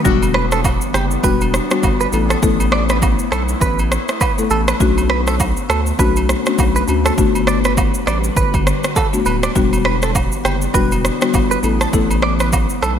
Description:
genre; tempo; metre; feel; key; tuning
afrobeats; 101 BPM; 4/4; swing 58% on 16ths; unclear; A4 = 440 Hz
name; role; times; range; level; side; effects
buzzing marimba with medium mallets; accompaniment; 0.0-12.5 s; G3 to A4; -20 LUFS; left 6 dB; none
glassy FM pad; sustained chords; 0.0-13.0 s; D3 to B4; -25 LUFS; left 2 dB; ensemble chorus, built-in reverb
saturated sub bass; bass; 0.1-13.0 s; D1 to D2; -20 LUFS; equal; none
deep house drum kit; drums; 0.1-13.0 s; kick drum, rim click, shaker; -18 LUFS; right 1 dB; overdrive, gated reverb
agogo bells and woodblock; percussion; 0.2-13.0 s; none; -28 LUFS; right 3 dB; none
direct-recorded clean electric guitar; riff; 0.3-12.9 s; G4 to D5; -23 LUFS; right 6 dB; analog chorus, ping-pong delay
room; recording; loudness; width
moderate plate reverb, RT60 2.4 s; bright 1980s-style digital production; -14 LUFS; side -8 dB against mid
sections
0.1-13.0 A section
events
none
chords
0.1 Em7; 2.1 Asus2; 4.8 Bm7; 7.2 Gmaj7; 9.6 Em7; 11.6 Asus2

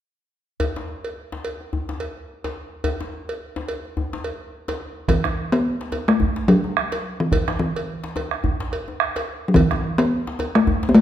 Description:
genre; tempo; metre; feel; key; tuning
west african traditional, West African drum ensemble; 107 BPM; 4/4; swing 57% on 16ths; unclear; A4 = 437 Hz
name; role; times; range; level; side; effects
cowbell; percussion; 0.6-11.0 s; none; -30 LUFS; right 2 dB; none
djembe; percussion; 0.6-10.9 s; none; -29 LUFS; left 2 dB; none
talking drum; melody; 5.1-11.0 s; E3 to B3; -18 LUFS; left 1 dB; none
bombo; percussion; 5.1-11.0 s; none; -25 LUFS; right 4 dB; none
room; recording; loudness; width
wet recital hall reverb, RT60 1.5 s; minimal, uncompressed stereo recording; -20 LUFS; side -11 dB against mid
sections
0.6-5.1 A section; 5.1-11.0 B section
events
none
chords
none

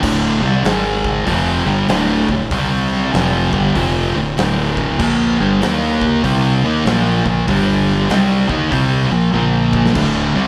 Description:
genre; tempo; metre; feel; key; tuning
stoner and doom metal; 97 BPM; 4/4; swing 64% on 8ths; D phrygian; A4 = 440 Hz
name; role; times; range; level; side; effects
thick fuzz guitar; riff; 0.0-10.5 s; D2 to Eb4; -19 LUFS; equal; distortion
thick fuzz guitar; riff; 0.0-10.5 s; D2 to Eb4; -21 LUFS; equal; distortion
fuzz fingered electric bass; bass; 0.0-10.5 s; D1 to Eb2; -25 LUFS; equal; overdrive
big rock drum kit; drums; 0.0-10.4 s; crash cymbal, hi-hat, kick drum, snare drum, toms; -24 LUFS; equal; none
room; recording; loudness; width
light reverb; band playing live in one room; -16 LUFS; mono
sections
0.0-10.5 A section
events
drum fill 9.3-10.0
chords
0.0 D5; 0.6 G#5; 1.3 Dm; 2.5 C5; 3.1 Dm; 5.0 Bb5; 5.6 Eb5; 6.2 Bb5; 7.5 G5; 8.1 Bb5; 10.0 D5

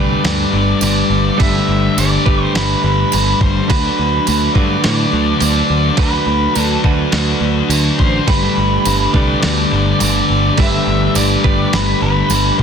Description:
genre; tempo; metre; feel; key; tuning
rock, shoegaze and dream pop; 104 BPM; 4/4; straight; G major; A4 = 441 Hz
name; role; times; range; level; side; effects
octave-fuzz lead guitar; melody; 0.0-12.6 s; B4 to E5; -19 LUFS; equal; distortion, slapback echo
direct-recorded clean electric guitar; riff; 0.0-12.6 s; D3 to B4; -20 LUFS; right 12 dB; reverse reverb
thick fuzz guitar; riff; 0.0-12.6 s; G2 to D4; -18 LUFS; left 11 dB; distortion, lush chorus
picked electric bass; bass; 0.0-12.6 s; G1 to A2; -18 LUFS; equal; none
clean 12-bit digital drum machine; drums; 0.2-12.6 s; crash cymbal, kick drum, snare drum; -18 LUFS; right 1 dB; none
tambourine; percussion; 0.8-12.4 s; none; -25 LUFS; right 16 dB; none
room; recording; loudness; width
digital ambience; dense, heavily limited modern master; -12 LUFS; side -7 dB against mid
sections
0.0-12.6 A section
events
none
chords
0.0 Gadd9; 3.7 D6; 8.3 Gadd9

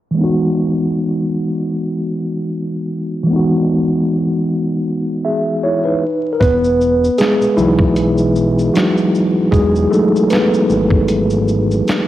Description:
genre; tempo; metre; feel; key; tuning
lo-fi hip hop; 77 BPM; 4/4; swing 56% on 16ths; E major; A4 = 439 Hz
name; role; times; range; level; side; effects
mellow tine electric piano; accompaniment; 0.1-12.1 s; E3 to E5; -14 LUFS; equal; medium stereo tremolo, cassette tape, low-pass filter
fat analog bass; bass; 6.4-11.8 s; E1 to B1; -20 LUFS; equal; transformer saturation
dusty soul sampler-style drum kit; drums; 6.4-12.1 s; hi-hat, kick drum, shaker, snare drum; -19 LUFS; equal; cassette tape
room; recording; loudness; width
light reverb; home recording on cassette, vinyl crackle, low-pass filter; -13 LUFS; side -13 dB against mid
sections
0.2-6.4 A section; 6.4-12.1 B section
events
filter sweep 0.2-6.4; tine electric piano solo 6.4-12.1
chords
0.2 Emaj9; 6.0 N.C.; 6.4 Emaj9

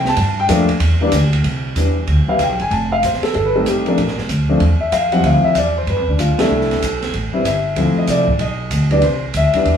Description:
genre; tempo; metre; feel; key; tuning
jazz piano trio; 190 BPM; 4/4; swing 64% on 8ths; C major; A4 = 438 Hz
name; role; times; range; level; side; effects
warm concert grand piano; melody; 0.0-9.8 s; E3 to A5; -16 LUFS; left 1 dB; none
upright bass; bass; 0.0-9.8 s; F1 to G2; -18 LUFS; equal; none
open jazz drum kit; drums; 0.1-9.8 s; hi-hat, kick drum, ride cymbal, snare drum; -24 LUFS; right 3 dB; none
room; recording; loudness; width
moderate studio reverb, RT60 0.5 s; heard from further back in the room, studio reverb; -14 LUFS; side -8 dB against mid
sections
0.0-1.4 A section; 1.4-9.8 B section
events
grand piano solo 0.0-1.4; band accent 6.3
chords
0.2 Gm7; 0.8 G5 (rootless); 1.4 Cmaj9; 2.7 F7; 4.0 Bb (rootless); 5.2 Dm11; 5.9 G5; 6.5 C6; 7.1 A7(no3); 7.8 Dm9; 8.4 G (rootless); 9.0 Cmaj9

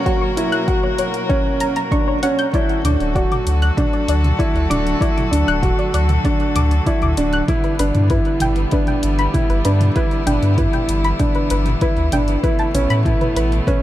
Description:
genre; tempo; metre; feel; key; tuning
piano and strings electronica; 97 BPM; 4/4; straight; D major; A4 = 440 Hz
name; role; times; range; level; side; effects
muted string quartet; sustained chords; 0.0-13.8 s; B2 to A#4; -24 LUFS; equal; none
soft round pluck; arpeggios; 0.1-13.8 s; B4 to G6; -25 LUFS; left 2 dB; chorus, cassette tape, sidechain pumping, ping-pong delay
dark upright piano; riff; 0.1-13.8 s; C#4 to F#4; -21 LUFS; right 1 dB; ping-pong delay
deep house drum kit; drums; 0.1-13.8 s; hi-hat, toms; -28 LUFS; right 1 dB; high-pass filter on hats, studio reverb, high-pass filter on toms
electronic kick drum; drums; 0.1-13.8 s; none; -20 LUFS; equal; studio reverb
warm sub bass; bass; 2.8-13.6 s; D1 to A2; -18 LUFS; equal; sidechain pumping
room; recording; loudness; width
light reverb; dark, warm production; -15 LUFS; side -13 dB against mid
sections
0.0-2.5 A section; 2.5-13.8 B section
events
build-up 0.0-2.5; drop 2.5-13.8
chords
0.0 F#; 2.5 D; 7.5 G6; 12.4 Aadd9

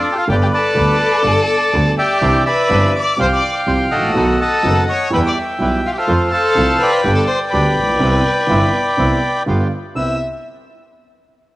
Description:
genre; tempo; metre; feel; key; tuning
tango; 124 BPM; 4/4; rubato; C major; A4 = 440 Hz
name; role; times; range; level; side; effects
bandoneon; melody; 0.0-10.2 s; F4 to E6; -16 LUFS; equal; cassette tape
clear violin; second line; 0.0-10.2 s; D4 to E5; -21 LUFS; left 2 dB; cassette tape
dark upright piano; accompaniment; 0.3-10.2 s; F#1 to A4; -20 LUFS; right 2 dB; cassette tape
clear double bass; bass; 0.3-10.2 s; F#1 to F2; -20 LUFS; equal; none
bandoneon; stabs; 2.2-10.2 s; B3 to C5; -26 LUFS; right 2 dB; cassette tape
room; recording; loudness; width
light reverb, small room ambience; home recording on cassette; -13 LUFS; side -17 dB against mid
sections
0.0-10.0 A section; 10.0-11.6 B section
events
none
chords
0.3 Gadd9; 2.2 Cadd9; 3.2 Fsus2/C; 4.2 B7; 5.1 Em; 6.1 F; 7.0 G; 8.0 Cmaj7; 9.5 G7; 10.0 Cmaj7

